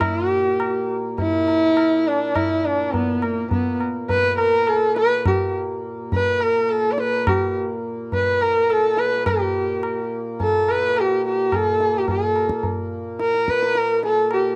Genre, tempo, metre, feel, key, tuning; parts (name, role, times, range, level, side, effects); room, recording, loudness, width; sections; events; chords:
indian classical, Hindustani; 105 BPM; 4/4; straight; Bb raga marwa; A4 = 436 Hz
warm sarangi; melody; 0.0-14.6 s; Bb3 to D5; -21 LUFS; equal
pedal harmonium; drone; 0.0-14.6 s; Bb2 to Bb3; -32 LUFS; equal
tabla; percussion; 0.0-14.5 s; -28 LUFS; equal
light reverb; dry, close 1970s-style studio recording; -21 LUFS; mono
0.0-9.3 A section; 9.3-14.6 B section
speeding up 0.0-14.6